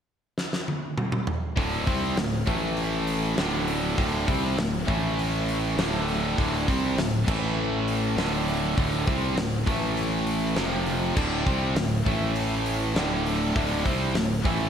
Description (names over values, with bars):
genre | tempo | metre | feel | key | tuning
hard rock | 100 BPM | 4/4 | straight | D minor | A4 = 442 Hz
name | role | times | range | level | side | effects
big rock drum kit | drums | 0.4-14.6 s | crash cymbal, hi-hat, kick drum, snare drum, toms | -29 LUFS | equal | gated reverb
distorted electric guitar | riff | 1.6-14.7 s | D2 to C4 | -30 LUFS | left 8 dB | overdrive
distorted electric guitar | riff | 1.6-14.7 s | D2 to C4 | -29 LUFS | right 9 dB | overdrive
heavy high-gain guitar | riff | 1.6-14.7 s | D2 to C4 | -31 LUFS | equal | distortion
fuzz fingered electric bass | bass | 1.6-14.7 s | D1 to C2 | -30 LUFS | equal | overdrive
room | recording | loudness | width
moderate plate reverb, RT60 2.1 s | bright 1980s-style digital production | -23 LUFS | side -8 dB against mid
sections
0.0-1.6 A section; 1.6-14.7 B section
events
drum fill 0.4-1.6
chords
0.0 N.C.; 1.6 D5; 2.5 A5; 3.4 D5; 4.9 A5; 5.8 D5; 7.3 A5; 8.2 D5; 9.7 A5; 10.6 F5; 11.2 D5; 12.1 A5; 13.0 D5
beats
0.38 0.98 | 1.58 2.18 2.78 3.38 | 3.98 4.58 5.18 5.78 | 6.38 6.98 7.58 8.18 | 8.78 9.37 9.97 10.57 | 11.17 11.77 12.37 12.96 | 13.56 14.15